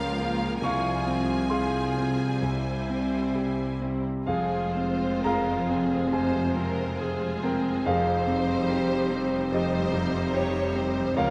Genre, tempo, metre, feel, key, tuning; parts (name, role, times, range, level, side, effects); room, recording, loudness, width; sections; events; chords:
classical, romantic movement for piano and orchestra; 58-74 BPM; 4/4; rubato; F minor; A4 = 443 Hz
clear concert grand piano; melody; 0.0-11.3 s; C2 to Db6; -29 LUFS; equal
rich symphonic violin section; melody; 0.0-11.3 s; Ab4 to C5; -40 LUFS; equal
warm symphonic violin section; second line; 0.0-11.3 s; Ab4 to Ab5; -37 LUFS; equal
rich symphonic viola section; accompaniment; 0.0-11.3 s; F3 to F4; -36 LUFS; equal
clear symphonic double bass section; bass; 0.0-11.3 s; F1 to Db2; -39 LUFS; equal
rich studio cello section; bass; 0.0-11.3 s; C2 to F2; -36 LUFS; equal
wet recital hall reverb, RT60 1.3 s; -26 LUFS; mono
0.0-11.3 A section
0.0 Bbm/Db; 0.6 Fm/C; 2.4 C; 4.3 Fm; 7.9 Cm/F